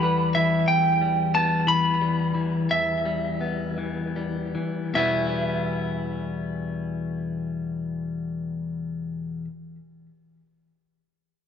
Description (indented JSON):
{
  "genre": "rock",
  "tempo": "49-61 BPM (dotted quarters)",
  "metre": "6/8",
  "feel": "straight",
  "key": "E minor",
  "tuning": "A4 = 439 Hz",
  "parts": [
    { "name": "lightly driven lead guitar", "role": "melody", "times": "0.0-9.4 s", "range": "E5 to B5", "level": "-24 LUFS", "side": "right 1 dB", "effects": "analog delay" },
    { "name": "electric guitar through a small old amp", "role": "arpeggios", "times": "0.0-0.7 s", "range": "B4", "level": "-30 LUFS", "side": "right 6 dB", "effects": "analog delay" },
    { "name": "semi-hollow electric guitar", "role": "arpeggios", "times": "0.0-9.5 s", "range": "E2 to E4", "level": "-26 LUFS", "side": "left 3 dB", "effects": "analog delay" }
  ],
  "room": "moderate large studio reverb, RT60 1.4 s",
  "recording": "nothing above 7.7 kHz",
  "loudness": "-23 LUFS",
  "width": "side -8 dB against mid",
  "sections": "0.0-4.9 A section; 4.9-9.8 B section",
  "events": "slowing down 0.7-4.9",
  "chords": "0.0 Em",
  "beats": "| 0.68 1.67 | 2.69 3.78 | 4.95 6.17 | 7.39 8.62"
}